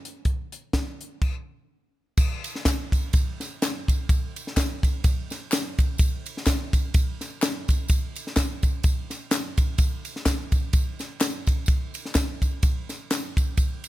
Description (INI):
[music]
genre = gospel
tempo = 126 BPM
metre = 4/4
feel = swing 56% on 8ths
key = none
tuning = none
[part]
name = crisp fusion drum kit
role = drums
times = 0.1-13.9 s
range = crash cymbal, hi-hat, kick drum, ride cymbal, snare drum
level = -23 LUFS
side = equal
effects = none
[part]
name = tambourine and handclaps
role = percussion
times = 2.2-13.9 s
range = none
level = -33 LUFS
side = left 1 dB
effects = none
[sound]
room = little or no reverb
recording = none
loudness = -23 LUFS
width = side -16 dB against mid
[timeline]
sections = 0.0-2.2 A section; 2.2-13.9 B section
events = none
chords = none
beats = | 0.26 0.74 1.22 1.70 | 2.18 2.66 3.14 3.62 | 4.09 4.57 5.04 5.52 | 6.00 6.47 6.95 7.42 | 7.89 8.37 8.84 9.32 | 9.79 10.26 10.74 11.21 | 11.69 12.16 12.63 13.11 | 13.58